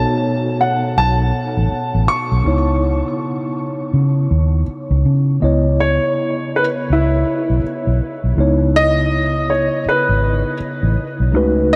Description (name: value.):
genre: R&B, neo-soul.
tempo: 81 BPM.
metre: 4/4.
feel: swing 62% on 16ths.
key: C# minor.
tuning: A4 = 438 Hz.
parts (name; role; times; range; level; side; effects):
warm grand piano; melody; 0.0-11.8 s; E4 to C#6; -22 LUFS; equal; delay.
mellow tine electric piano; accompaniment; 0.0-11.8 s; B2 to D#5; -22 LUFS; equal; none.
vintage muted fingered electric bass; bass; 0.0-11.8 s; G#1 to C#3; -18 LUFS; equal; none.
room: wet huge ambient reverb, RT60 8.3 s.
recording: dreamy mix soaked in reverb.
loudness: -17 LUFS.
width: mono.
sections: 0.0-5.4 A section; 5.4-11.8 B section.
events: grand piano solo 5.4-11.8.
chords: 0.0 B9; 2.4 C#m9; 5.4 C#m7.